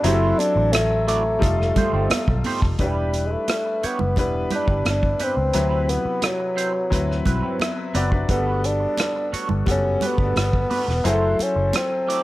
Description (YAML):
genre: lush 1970s-style soul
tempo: 87 BPM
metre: 4/4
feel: straight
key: E minor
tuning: A4 = 441 Hz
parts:
  - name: mellow bassoon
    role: melody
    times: 0.0-12.2 s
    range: F#3 to E4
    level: -23 LUFS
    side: equal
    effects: none
  - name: clear grand piano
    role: accompaniment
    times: 0.0-12.2 s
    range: C3 to E5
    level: -27 LUFS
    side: left 4 dB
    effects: none
  - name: electric guitar at the edge of break-up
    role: riff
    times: 0.0-12.2 s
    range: F#3 to D5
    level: -30 LUFS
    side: right 4 dB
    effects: wah
  - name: vintage muted fingered electric bass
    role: bass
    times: 0.0-11.7 s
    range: E1 to D2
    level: -23 LUFS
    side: equal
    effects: none
  - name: vintage drum kit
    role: drums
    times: 0.0-12.2 s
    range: hi-hat, kick drum, rim click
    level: -25 LUFS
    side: equal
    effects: none
  - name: congas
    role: percussion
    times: 0.4-11.9 s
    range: none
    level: -30 LUFS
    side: right 4 dB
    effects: none
room: little or no reverb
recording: none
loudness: -19 LUFS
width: side -17 dB against mid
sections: 0.0-2.8 A section; 2.8-12.2 B section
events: none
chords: 0.0 F#m7b5; 1.4 F9; 2.8 Em7; 5.5 D13; 8.3 Gmaj9; 11.1 F#m7b5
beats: | 0.04 0.73 1.42 2.10 | 2.79 3.48 4.17 4.86 | 5.54 6.23 6.92 7.61 | 8.30 8.98 9.67 10.36 | 11.05 11.74